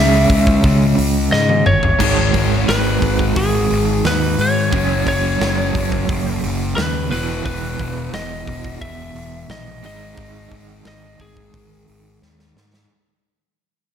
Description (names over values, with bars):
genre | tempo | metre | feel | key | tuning
hard rock | 88 BPM | 4/4 | straight | G# minor | A4 = 440 Hz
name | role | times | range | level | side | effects
lightly driven lead guitar | melody | 0.0-12.2 s | G#4 to E5 | -22 LUFS | equal | slapback echo, tape echo
overdriven semi-hollow guitar | riff | 0.0-12.6 s | E2 to C#4 | -23 LUFS | right 9 dB | tremolo
sludgy distorted guitar | riff | 0.0-12.6 s | E2 to C#4 | -22 LUFS | left 8 dB | overdrive
fuzz fingered electric bass | bass | 0.0-12.9 s | E1 to G#2 | -21 LUFS | equal | overdrive
big rock drum kit | drums | 0.3-12.9 s | crash cymbal, hi-hat, kick drum, snare drum, toms | -22 LUFS | equal | none
room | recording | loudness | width
moderate scoring stage reverb, RT60 2.0 s, small room ambience | big arena sound | -14 LUFS | side -8 dB against mid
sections
0.0-12.9 A section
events
fade-out 0.0-12.9; drum fill 1.3-2.0, 12.2-12.9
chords
0.0 C#m; 2.0 G#m; 4.7 F#5; 7.1 E5; 9.8 G#5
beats
0.64 1.32 | 2.00 2.68 3.36 4.05 | 4.73 5.41 6.09 6.77 | 7.45 8.14 8.82 9.50 | 10.18 10.86 11.54 12.22